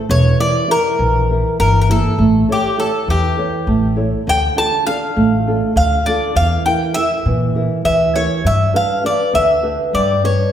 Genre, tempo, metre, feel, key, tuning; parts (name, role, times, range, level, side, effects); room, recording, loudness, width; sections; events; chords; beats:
greek folk, Greek bouzouki band; 201 BPM (eighths); 7/8; straight; A4 = 440 Hz
nylon-string guitar; accompaniment; 0.0-10.5 s; D3 to C#5; -19 LUFS; right 1 dB
Greek bouzouki; melody; 0.1-10.5 s; G4 to A5; -17 LUFS; equal
upright bass; bass; 0.1-10.4 s; E1 to Bb2; -18 LUFS; equal
wet recital hall reverb, RT60 1.3 s; recorded in a church or concert hall; -13 LUFS; side -10 dB against mid
0.0-10.5 A section
0.1 Edim; 2.2 A; 4.3 Dm; 6.4 Edim; 8.4 G
| 0.10 0.40 0.69 0.99 1.29 1.59 1.89 | 2.19 2.48 2.78 3.08 3.38 3.68 3.98 | 4.27 4.57 4.87 5.17 5.47 5.76 6.06 | 6.36 6.66 6.96 7.25 7.55 7.85 8.15 | 8.45 8.74 9.04 9.34 9.64 9.94 10.23